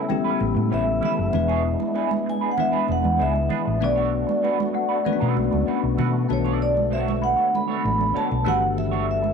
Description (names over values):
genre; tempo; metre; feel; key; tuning
lush 1970s-style soul; 97 BPM; 4/4; straight; B minor; A4 = 440 Hz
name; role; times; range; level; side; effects
vibraphone with soft mallets; melody; 0.0-9.3 s; C#5 to B5; -24 LUFS; right 1 dB; none
bell-like tine electric piano; accompaniment; 0.0-9.3 s; G3 to B4; -26 LUFS; left 15 dB; phaser
percussive tonewheel organ; sustained chords; 0.0-9.3 s; C#3 to A4; -33 LUFS; equal; slow rotary speaker, overdrive, chorus vibrato
electric guitar through a small old amp; riff; 0.0-9.3 s; G3 to D5; -31 LUFS; right 15 dB; wah, spring reverb
celesta; texture; 0.0-8.7 s; C#5 to B5; -34 LUFS; left 13 dB; none
congas; percussion; 0.1-9.3 s; none; -30 LUFS; right 15 dB; none
hollow-body short-scale fingered electric bass; bass; 0.4-9.3 s; E1 to B2; -25 LUFS; equal; none
room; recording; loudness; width
light reverb; 1960s-style stereo with parts hard left and right; -20 LUFS; side -6 dB against mid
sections
0.0-6.3 A section; 6.3-9.3 B section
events
none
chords
0.0 A9; 1.3 E7; 3.8 Bm7; 6.3 Bm9; 8.5 Gmaj9